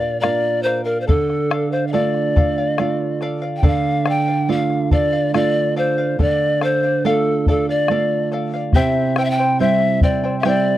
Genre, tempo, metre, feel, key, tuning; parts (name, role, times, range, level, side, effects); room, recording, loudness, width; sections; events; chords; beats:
andean folk, Andean ensemble; 70 BPM; 3/4; straight; D minor; A4 = 440 Hz
mellow pan flute; melody; 0.0-10.8 s; A4 to G5; -19 LUFS; left 1 dB
charango; accompaniment; 0.0-10.8 s; E4 to G5; -26 LUFS; left 4 dB
nylon-string guitar; accompaniment; 0.0-10.8 s; Bb2 to F4; -20 LUFS; right 5 dB
bombo; percussion; 0.2-10.6 s; -17 LUFS; left 1 dB
light reverb; dry, close 1970s-style studio recording; -16 LUFS; side -14 dB against mid
0.0-3.6 A section; 3.6-10.8 A section
0.0 Bb; 1.1 Dm; 8.7 C
0.23 | 1.09 1.94 2.79 | 3.64 4.49 5.34 | 6.20 7.05 7.90 | 8.75 9.60 10.45